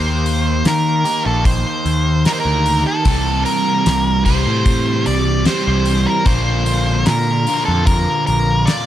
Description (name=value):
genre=psychedelic rock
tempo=75 BPM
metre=4/4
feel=straight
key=unclear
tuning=A4 = 440 Hz
part: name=octave-fuzz lead guitar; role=melody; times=0.0-8.9 s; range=A4 to D5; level=-19 LUFS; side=equal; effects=distortion, slapback echo
part: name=overdriven semi-hollow guitar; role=riff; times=0.0-8.9 s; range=Bb2 to G4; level=-20 LUFS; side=right 2 dB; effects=phaser
part: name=growling picked electric bass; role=bass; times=0.0-8.7 s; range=Bb1 to Eb3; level=-18 LUFS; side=equal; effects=overdrive
part: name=damped 70s drum kit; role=drums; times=0.3-8.9 s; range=hi-hat, kick drum, snare drum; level=-19 LUFS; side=equal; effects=none
room=small room ambience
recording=none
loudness=-14 LUFS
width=side -12 dB against mid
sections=0.0-8.9 A section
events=none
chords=0.0 Eb; 3.1 C; 6.3 Bb